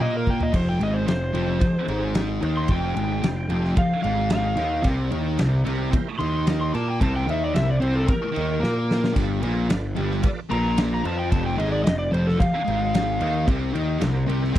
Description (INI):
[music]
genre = blues rock power trio and southern rock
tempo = 111 BPM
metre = 4/4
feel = straight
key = unclear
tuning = A4 = 442 Hz
[part]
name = overdriven slide guitar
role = melody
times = 0.0-13.4 s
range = A4 to C6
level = -27 LUFS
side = equal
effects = slapback echo
[part]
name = bright tonewheel organ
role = sustained chords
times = 0.0-14.6 s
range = Eb4 to G5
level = -38 LUFS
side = right 5 dB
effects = slow rotary speaker, overdrive, chorus vibrato
[part]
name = thick fuzz guitar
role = riff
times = 0.0-14.6 s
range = F2 to Bb4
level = -25 LUFS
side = left 1 dB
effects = distortion
[part]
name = fuzz picked electric bass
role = bass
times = 0.0-14.6 s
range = F1 to Bb2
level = -26 LUFS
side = equal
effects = overdrive
[part]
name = big rock drum kit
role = drums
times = 0.0-14.6 s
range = crash cymbal, kick drum, ride cymbal, snare drum, splash cymbal, toms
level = -24 LUFS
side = equal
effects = none
[sound]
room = little or no reverb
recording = dry, close 1970s-style studio recording, lossy compression artefacts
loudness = -20 LUFS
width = side -13 dB against mid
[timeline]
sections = 0.0-14.6 A section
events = electric slide guitar solo 0.0-14.6; drum fill 0.0-0.5, 8.6-9.2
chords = 0.0 C7 (rootless); 0.5 F7; 4.8 C7; 9.2 G7; 11.3 F7; 13.5 C7